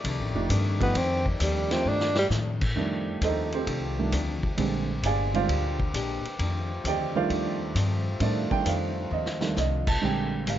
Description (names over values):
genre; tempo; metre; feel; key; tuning
jazz, big band swing; 132 BPM; 4/4; swing 68% on 8ths; F mixolydian; A4 = 441 Hz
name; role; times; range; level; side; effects
archtop guitar, miked and amplified; accompaniment; 0.0-10.6 s; F2 to G4; -36 LUFS; left 5 dB; none
bright trombone section; sustained chords; 0.0-10.6 s; D3 to D5; -38 LUFS; left 3 dB; none
upright bass; bass; 0.0-10.6 s; F1 to A2; -29 LUFS; left 1 dB; none
vintage drum kit; drums; 0.0-10.6 s; crash cymbal, hi-hat, kick drum, ride cymbal, snare drum; -32 LUFS; left 1 dB; none
warm grand piano; accompaniment; 0.4-10.6 s; D3 to A5; -28 LUFS; right 5 dB; none
breathy tenor saxophone; melody; 0.8-2.3 s; Eb3 to D4; -26 LUFS; equal; none
room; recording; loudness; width
light reverb; nothing above 7.5 kHz; -24 LUFS; side -11 dB against mid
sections
0.0-2.8 A section; 2.8-10.6 A section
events
tenor saxophone solo 0.0-2.8; drum fill 1.9-2.3, 9.1-9.6; grand piano solo 2.8-10.6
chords
0.0 F13; 4.6 Bb13; 6.4 F13; 10.0 Bb13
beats
0.04 0.50 | 0.95 1.40 1.85 2.31 | 2.76 3.21 3.67 4.12 | 4.57 5.03 5.48 5.93 | 6.39 6.84 7.29 7.75 | 8.20 8.65 9.11 9.56 | 10.01 10.47